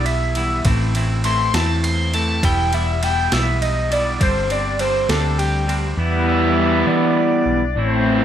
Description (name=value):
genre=indie rock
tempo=68 BPM (dotted quarters)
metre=6/8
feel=straight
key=unclear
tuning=A4 = 440 Hz
part: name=overdriven synth lead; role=melody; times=0.0-8.2 s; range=G4 to C6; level=-21 LUFS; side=equal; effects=phaser, slapback echo
part: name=crunchy overdriven guitar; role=riff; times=0.0-8.2 s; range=G2 to E4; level=-20 LUFS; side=left 1 dB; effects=none
part: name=hollow-body short-scale fingered electric bass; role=bass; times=0.0-8.2 s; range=E1 to E3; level=-21 LUFS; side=equal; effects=none
part: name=crisp 8-bit digital drum machine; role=drums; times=0.1-5.8 s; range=kick drum, ride cymbal, snare drum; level=-25 LUFS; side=equal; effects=overdrive
room=light reverb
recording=none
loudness=-16 LUFS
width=side -10 dB against mid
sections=0.0-6.0 A section; 6.0-8.2 B section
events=analog synth lead solo 0.0-6.0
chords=0.0 Em; 0.7 Am; 2.4 Em; 4.2 Gsus4; 6.0 Em7